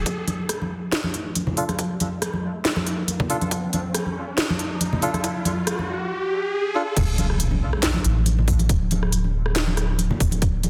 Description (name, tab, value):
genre	deep dubstep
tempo	139 BPM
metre	4/4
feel	swing 54% on 16ths, half-time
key	D minor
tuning	A4 = 438 Hz
part	soft dub sub bass	bass	0.0-10.7 s	D1 to A1	-25 LUFS	equal	tube saturation, high-pass filter
part	riser and impact	sound effects	0.0-8.7 s	none	-31 LUFS	equal	none
part	electronic kick drum	drums	0.1-10.5 s	none	-27 LUFS	equal	high-pass filter on kick, high-pass filter on room
part	garage drum kit	drums	0.1-10.7 s	crash cymbal, handclaps, hi-hat, rim click, snare drum	-28 LUFS	equal	soft clipping on snare
part	congas	percussion	0.3-10.7 s	none	-29 LUFS	equal	none
part	melodica	stabs	1.6-6.8 s	D4 to A4	-31 LUFS	equal	low-pass filter, dub echo
room	moderate echo chamber reverb, RT60 1.6 s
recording	dense, heavily limited modern master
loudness	-23 LUFS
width	mono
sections	0.1-7.0 A section; 7.0-10.7 B section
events	build-up 0.1-7.0; riser 0.1-7.0; filter sweep on melodica 0.1-7.0; drop 7.0-10.7; impact 7.0-8.7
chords	0.1 D5